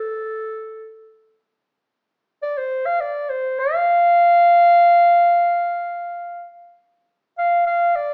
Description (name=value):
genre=mongolian traditional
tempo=free time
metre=none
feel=none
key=F gong mode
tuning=A4 = 437 Hz
part: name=dark clarinet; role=solo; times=0.0-8.1 s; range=A4 to F5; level=-18 LUFS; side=equal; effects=none
room=wet large studio reverb, RT60 1.1 s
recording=band playing live in one room, small speaker sound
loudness=-17 LUFS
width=mono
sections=0.0-7.1 A section; 7.1-8.1 B section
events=none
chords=none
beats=free time